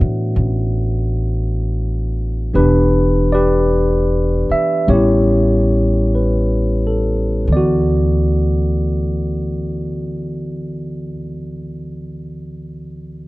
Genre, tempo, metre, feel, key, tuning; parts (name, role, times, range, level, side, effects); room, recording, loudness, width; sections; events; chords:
jazz ballad; 43-57 BPM; 4/4; swing 68% on 8ths; D major; A4 = 442 Hz
bright tine electric piano; accompaniment; 0.0-13.3 s; D2 to F#5; -18 LUFS; equal
upright bass; bass; 0.0-11.1 s; E1 to A2; -18 LUFS; equal
light reverb; dark, warm production; -14 LUFS; side -20 dB against mid
0.0-2.5 A section; 2.5-7.5 B section; 7.5-13.0 C section
slowing down 0.0-7.5
0.0 D69; 2.5 Em7; 4.9 A9; 7.5 D69